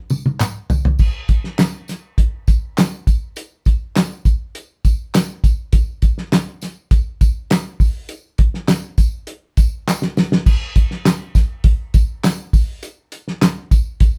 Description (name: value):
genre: soul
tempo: 101 BPM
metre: 4/4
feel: straight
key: none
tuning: none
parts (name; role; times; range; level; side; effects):
- cloth-damped thuddy drum kit; drums; 0.1-14.1 s; crash cymbal, hi-hat, kick drum, snare drum, toms; -17 LUFS; equal; none
- tambourine and handclaps; percussion; 0.1-14.1 s; none; -30 LUFS; equal; none
room: moderate studio ambience, RT60 0.5 s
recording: band playing live in one room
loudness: -18 LUFS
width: mono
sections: 1.0-10.5 A section; 10.5-14.2 B section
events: drum fill 0.0-1.0, 9.9-10.5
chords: none